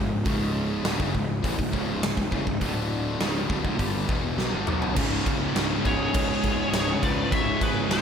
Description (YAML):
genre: heavy metal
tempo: 102 BPM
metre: 4/4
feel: straight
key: C# minor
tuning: A4 = 440 Hz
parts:
  - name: heavy high-gain guitar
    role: riff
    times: 0.0-8.0 s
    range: C#2 to B3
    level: -30 LUFS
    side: left 9 dB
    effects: distortion
  - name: sludgy distorted guitar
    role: riff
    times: 0.0-8.0 s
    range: C#2 to B3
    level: -31 LUFS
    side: right 8 dB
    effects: overdrive
  - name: fuzz picked electric bass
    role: bass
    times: 0.0-8.0 s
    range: C#1 to C#2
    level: -31 LUFS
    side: equal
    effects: overdrive
  - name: big rock drum kit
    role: drums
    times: 0.3-8.0 s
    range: crash cymbal, hi-hat, kick drum, snare drum, toms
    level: -27 LUFS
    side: equal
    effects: none
  - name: thick fuzz guitar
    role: riff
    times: 5.0-8.0 s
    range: C#2 to C#3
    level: -30 LUFS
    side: equal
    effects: distortion
  - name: high-gain lead guitar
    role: melody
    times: 5.9-8.0 s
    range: B4 to E5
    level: -28 LUFS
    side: left 3 dB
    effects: distortion
  - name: high-gain lead guitar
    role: second line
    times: 5.9-8.0 s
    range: G#4 to C#5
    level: -33 LUFS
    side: right 2 dB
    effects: distortion
room: moderate concert hall reverb, RT60 2.3 s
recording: big arena sound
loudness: -23 LUFS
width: side -7 dB against mid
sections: 0.0-5.0 A section; 5.0-8.0 B section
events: drum fill 4.4-5.0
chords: 0.0 C#5; 2.6 D5; 3.2 C#m; 5.0 C#5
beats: | 0.26 0.84 1.43 2.02 | 2.61 3.20 3.79 4.38 | 4.96 5.55 6.14 6.72 | 7.31 7.90